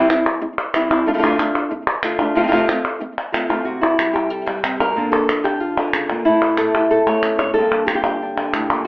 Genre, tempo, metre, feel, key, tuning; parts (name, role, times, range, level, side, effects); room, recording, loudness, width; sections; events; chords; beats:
flamenco; 185 BPM; 4/4; straight; A4 = 440 Hz
flamenco guitar; melody; 0.0-8.9 s; F2 to C#5; -17 LUFS; equal; slapback echo
palmas hand claps; percussion; 0.1-8.9 s; -21 LUFS; equal
wet small room reverb, RT60 0.5 s; heard from further back in the room, telephone sound; -16 LUFS; side -22 dB against mid
0.0-3.7 A section; 3.7-8.9 B section
0.0 C; 1.1 Dm; 2.4 F; 3.7 C; 5.0 Bb; 6.3 A; 7.6 Gmadd9
0.10 0.42 0.74 | 1.07 1.39 1.72 2.04 | 2.36 2.69 3.01 3.34 | 3.66 3.99 4.31 4.64 | 4.96 5.29 5.61 5.93 | 6.26 6.58 6.91 7.23 | 7.56 7.88 8.21 8.53 | 8.86